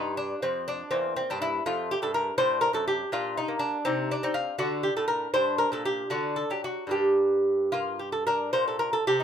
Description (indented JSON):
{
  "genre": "classical, baroque-style dance for lute",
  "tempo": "72-85 BPM (dotted quarters)",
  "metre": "6/8",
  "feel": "rubato",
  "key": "G minor",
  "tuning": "A4 = 440 Hz",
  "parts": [
    { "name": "lute", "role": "solo", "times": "0.0-9.2 s", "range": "E2 to C5", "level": "-25 LUFS", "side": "equal", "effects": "none" }
  ],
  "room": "light reverb",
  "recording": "minimal, uncompressed stereo recording",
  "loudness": "-25 LUFS",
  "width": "side -8 dB against mid",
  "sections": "0.0-8.6 A section",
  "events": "none",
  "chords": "0.0 F5; 0.9 Em7b5; 1.7 F; 2.4 D/A; 3.1 Bbadd11; 3.8 Cmadd11; 4.6 D5; 5.3 Gm; 6.1 D; 6.9 Gm; 8.6 Bb5",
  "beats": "0.18 | 0.92 1.65 | 2.37 3.11 | 3.84 4.58 | 5.33 6.11 | 6.92 7.74 | 8.56"
}